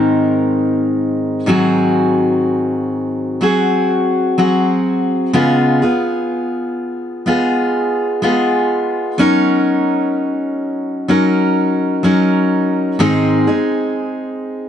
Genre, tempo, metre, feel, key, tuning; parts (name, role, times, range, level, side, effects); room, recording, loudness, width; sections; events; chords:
pop; 62 BPM; 4/4; straight; A4 = 441 Hz
picked steel-string acoustic guitar; solo; 0.0-14.7 s; Ab2 to Bb4; -14 LUFS; equal
light reverb; nothing above 10.8 kHz; -13 LUFS; side -9 dB against mid
0.0-1.5 A section; 1.5-14.7 B section
0.0 Abadd9; 1.5 Ab7; 5.3 Db7; 9.2 Gb6; 13.0 Ab